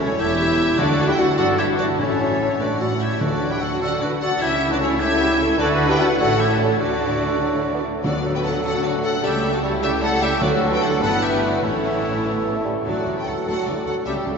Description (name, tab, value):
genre	quick classical-period movement for symphony orchestra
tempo	100 BPM (dotted quarters)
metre	6/8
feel	straight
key	D major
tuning	A4 = 440 Hz
part	rich studio violin section	melody	0.0-14.1 s	C#5 to G5	-26 LUFS	left 2 dB	none
part	concert flute	second line	0.0-14.1 s	E4 to E5	-28 LUFS	left 1 dB	none
part	mellow clarinet	second line	0.0-14.4 s	C#4 to A4	-29 LUFS	left 1 dB	none
part	warm oboe	second line	0.0-14.4 s	E4 to B4	-30 LUFS	right 1 dB	none
part	warm studio violin section	second line	0.0-14.4 s	A3 to B4	-30 LUFS	left 2 dB	none
part	warm studio viola section	accompaniment	0.0-14.3 s	E3 to B4	-27 LUFS	right 2 dB	none
part	mellow French horn section	sustained chords	0.0-14.4 s	G3 to G4	-26 LUFS	left 2 dB	none
part	warm studio cello section	bass	0.0-14.3 s	C#2 to D3	-28 LUFS	right 3 dB	none
part	warm studio double bass section	bass	0.0-14.3 s	E1 to D2	-29 LUFS	right 2 dB	none
part	timpani	percussion	0.8-3.8, 8.0-12.2 s	A2 to D3	-30 LUFS	equal	none
part	mellow bassoon	accompaniment	7.4-14.4 s	E3 to B3	-29 LUFS	right 1 dB	none
part	dark trumpet section	stabs	8.0-14.4 s	A4 to B4	-28 LUFS	right 1 dB	none
room	wet cathedral reverb, RT60 5.2 s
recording	nothing above 7.6 kHz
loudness	-18 LUFS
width	side -5 dB against mid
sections	0.0-8.0 A section; 8.0-14.4 A section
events	none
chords	0.0 A7/E; 0.8 D; 1.4 Em/G; 2.0 A; 3.2 D; 4.4 A7/C#; 5.6 D; 6.2 A; 6.8 D; 9.2 A7/C#; 10.4 D; 11.0 Em/G; 11.6 A; 12.9 D